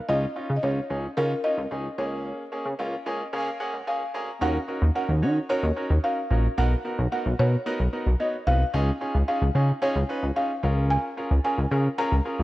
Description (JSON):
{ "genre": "dance-pop", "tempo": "111 BPM", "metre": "4/4", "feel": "straight", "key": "Eb minor", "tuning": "A4 = 439 Hz", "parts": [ { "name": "buzzing marimba with soft mallets", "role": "melody", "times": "0.0-12.4 s", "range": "Bb4 to Bb5", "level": "-29 LUFS", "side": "equal", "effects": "dub echo" }, { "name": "clear grand piano", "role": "accompaniment", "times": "0.1-12.4 s", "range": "Bb3 to Bb5", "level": "-30 LUFS", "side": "equal", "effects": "none" }, { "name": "chorused synth bass", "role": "bass", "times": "0.1-12.4 s", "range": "Bb1 to Eb3", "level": "-23 LUFS", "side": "equal", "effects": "none" } ], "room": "light reverb, small room ambience", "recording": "worn, warbling old tape, cassette tape, warbly pitch drift, high-pass filter", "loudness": "-23 LUFS", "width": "side -17 dB against mid", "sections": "0.0-4.4 A section; 4.4-12.4 B section", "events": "build-up 0.0-4.4; filter sweep 0.0-4.4; grand piano fill 2.8-4.4; drop 4.4-12.4", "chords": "0.1 Dbadd9; 2.0 Bbm7/Db; 4.4 Ebm7; 6.6 Bmaj7; 8.7 Dbadd9; 10.6 Bbm7/Db" }